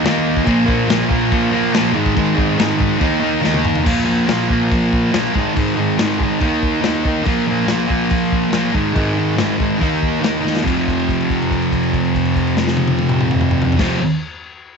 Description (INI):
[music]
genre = garage rock duo or trio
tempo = 142 BPM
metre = 4/4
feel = straight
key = F minor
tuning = A4 = 440 Hz
[part]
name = thick fuzz guitar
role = riff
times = 0.0-14.0 s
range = F2 to Eb4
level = -15 LUFS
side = right 1 dB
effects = distortion
[part]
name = crunchy breakbeat drum kit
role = drums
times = 0.1-13.9 s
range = crash cymbal, hi-hat, kick drum, snare drum, toms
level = -21 LUFS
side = left 2 dB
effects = none
[sound]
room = small room ambience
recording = 1960s-style stereo, nothing above 8.0 kHz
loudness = -14 LUFS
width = side -5 dB against mid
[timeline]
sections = 0.0-3.8 A section; 3.8-10.6 B section; 10.6-14.0 C section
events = drum fill 3.4-3.8, 10.4; held note 10.6-13.8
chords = 0.5 Bb5; 1.9 Ab5; 3.0 Eb5; 3.8 Bb5; 5.3 Ab5; 6.4 Eb5; 7.2 Bb5; 8.7 Ab5; 9.8 Eb5; 10.6 F5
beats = 0.04 | 0.46 0.89 1.31 1.73 | 2.15 2.58 3.00 3.42 | 3.85 4.27 4.70 5.12 | 5.55 5.97 6.40 6.82 | 7.25 7.67 8.10 8.53 | 8.95 9.37 9.80 10.22 | 10.65 11.07 11.49 11.92 | 12.34 12.76 13.19 13.61